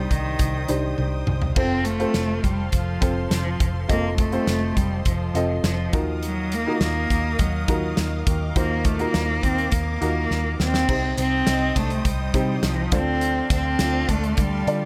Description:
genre	piano-driven pop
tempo	103 BPM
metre	4/4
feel	straight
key	unclear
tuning	A4 = 440 Hz
part	rich cello	melody	0.0-14.9 s	Eb3 to C4	-28 LUFS	equal	none
part	clear upright piano	accompaniment	0.0-14.9 s	C3 to Eb5	-31 LUFS	equal	none
part	rich studio string section	sustained chords	0.0-14.9 s	A4 to Eb6	-38 LUFS	equal	none
part	vintage muted picked electric bass	bass	0.0-14.9 s	F1 to D3	-28 LUFS	equal	none
part	modern studio drum kit	drums	0.1-14.8 s	crash cymbal, hi-hat, kick drum, snare drum, toms	-27 LUFS	equal	none
part	picked steel-string acoustic guitar	riff	11.2-14.2 s	C4 to F4	-35 LUFS	equal	none
room	little or no reverb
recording	none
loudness	-23 LUFS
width	mono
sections	0.0-10.9 A section; 10.9-14.9 B section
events	drum fill 1.0-1.6, 10.3-10.9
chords	0.0 Cmadd9; 1.6 F; 5.9 Ebmadd9; 10.9 Cm; 12.9 Dm7

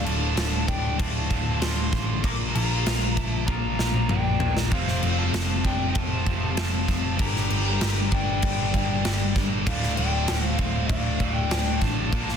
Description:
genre	hard rock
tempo	97 BPM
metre	4/4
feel	straight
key	D minor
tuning	A4 = 440 Hz
part	lead guitar through a small cranked amp	melody	0.0-12.4 s	F5 to D6	-32 LUFS	left 3 dB	overdrive, tape echo
part	octave-fuzz lead guitar	second line	0.0-12.4 s	C4 to Bb4	-38 LUFS	right 5 dB	distortion
part	cranked stack guitar	riff	0.0-12.4 s	D2 to Bb3	-32 LUFS	left 13 dB	overdrive, harmonic tremolo
part	tight distorted guitar	riff	0.0-12.4 s	D2 to Bb3	-33 LUFS	right 14 dB	distortion
part	hollow-body short-scale picked electric bass	bass	0.0-12.4 s	D1 to Bb1	-27 LUFS	right 1 dB	none
part	big rock drum kit	drums	0.1-12.4 s	crash cymbal, kick drum, snare drum, toms	-26 LUFS	equal	none
part	distorted electric guitar	riff	4.7-12.4 s	D2 to Bb4	-34 LUFS	right 1 dB	distortion
room	small room ambience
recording	dense, heavily limited modern master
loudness	-22 LUFS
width	side -7 dB against mid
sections	0.0-12.4 A section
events	drum fill 3.5-4.7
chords	0.0 Dm; 2.2 Bb5; 4.7 F; 7.2 Gm; 9.7 Dm

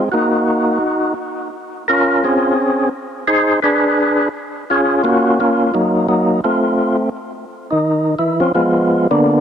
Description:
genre	jazz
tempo	171 BPM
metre	4/4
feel	swing 64% on 8ths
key	unclear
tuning	A4 = 440 Hz
part	percussive tonewheel organ	solo	0.0-9.4 s	D3 to C5	-14 LUFS	equal	slow rotary speaker, tape echo
room	light reverb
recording	dry, close 1970s-style studio recording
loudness	-13 LUFS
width	side -8 dB against mid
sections	0.0-7.1 A section; 7.1-9.4 B section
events	tonewheel organ solo 7.1-9.4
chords	0.1 Ebm/Bb; 0.8 N.C.; 1.5 Bbm9; 2.9 Ab/Eb; 3.6 Abdim/D; 4.3 Bbm7; 5.7 Gb6; 6.4 F; 7.1 Dbmaj9/Eb; 8.5 Fdim

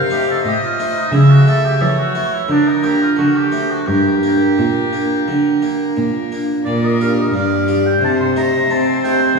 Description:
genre	classical, baroque-style sonata movement with continuo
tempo	88 BPM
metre	4/4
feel	straight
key	unclear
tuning	A4 = 441 Hz
part	rich violin	melody	0.0-9.4 s	A4 to F5	-24 LUFS	left 5 dB	none
part	warm oboe	second line	0.0-9.4 s	D4 to C6	-20 LUFS	right 2 dB	none
part	harpsichord	accompaniment	0.0-9.4 s	G2 to G4	-18 LUFS	equal	none
part	rich cello	bass	0.0-9.4 s	G2 to C4	-17 LUFS	right 1 dB	none
room	wet scoring stage reverb, RT60 2.0 s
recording	heard from further back in the room, small room ambience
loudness	-13 LUFS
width	side -4 dB against mid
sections	0.0-6.7 A section; 6.7-9.4 A section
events	none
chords	0.0 Adim/C; 1.1 A/C#; 2.5 Ebmaj9/D; 3.2 D5; 3.9 Gm; 8.0 Am7b5/C

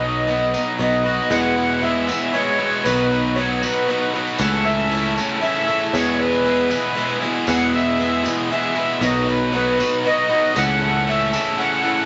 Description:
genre	folk rock and heartland rock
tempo	117 BPM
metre	3/4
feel	straight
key	E major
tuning	A4 = 440 Hz
part	accordion	melody	0.0-12.1 s	B4 to F#5	-23 LUFS	equal	light tremolo tuning
part	picked twelve-string acoustic guitar	accompaniment	0.0-12.1 s	B2 to B4	-29 LUFS	equal	none
part	crunchy overdriven guitar	riff	0.0-12.1 s	E2 to F#4	-24 LUFS	equal	none
part	picked electric bass	bass	0.0-11.4 s	B1 to E2	-25 LUFS	equal	none
part	tambourine	percussion	0.5-12.0 s	none	-38 LUFS	equal	none
room	wet club reverb, RT60 0.7 s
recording	nothing above 7.8 kHz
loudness	-19 LUFS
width	mono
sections	0.0-1.3 A section; 1.3-12.1 B section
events	none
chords	0.0 B; 1.3 E; 2.9 B; 4.4 A/C#; 5.9 E; 9.0 B; 10.6 A/C#

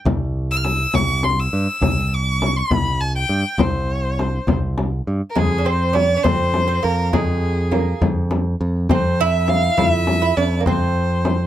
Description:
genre	Persian modal ensemble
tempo	68 BPM (dotted quarters)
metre	6/8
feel	straight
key	C dastgah chahargah, F avaz esfahan from 5.4 s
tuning	A4 = 440 Hz
part	modern bright picked electric bass	bass	0.1-11.5 s	C2 to G2	-20 LUFS	equal	none
part	frame drum	percussion	0.1-11.4 s	none	-21 LUFS	left 2 dB	none
part	clear violin	melody	0.5-11.5 s	Ab4 to F6	-22 LUFS	left 2 dB	none
part	lute	second line	5.4-11.5 s	Ab3 to E4	-23 LUFS	right 8 dB	none
room	little or no reverb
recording	close, detailed microphones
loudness	-17 LUFS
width	side -12 dB against mid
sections	0.0-5.4 A section; 5.4-11.5 B section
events	none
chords	none

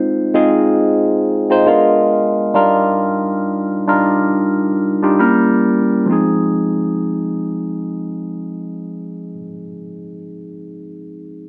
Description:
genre	R&B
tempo	68 BPM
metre	4/4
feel	swing 62% on 16ths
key	F dorian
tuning	A4 = 439 Hz
part	barky tine electric piano	accompaniment	0.0-11.5 s	F3 to C5	-17 LUFS	equal	phaser, plate reverb
room	moderate studio reverb, RT60 0.8 s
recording	none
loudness	-15 LUFS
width	mono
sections	0.0-6.1 A section; 6.1-9.6 B section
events	none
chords	0.0 Fm7; 1.7 Bb7b9; 2.5 Ebmaj9; 5.2 Edim7; 6.1 Fm7

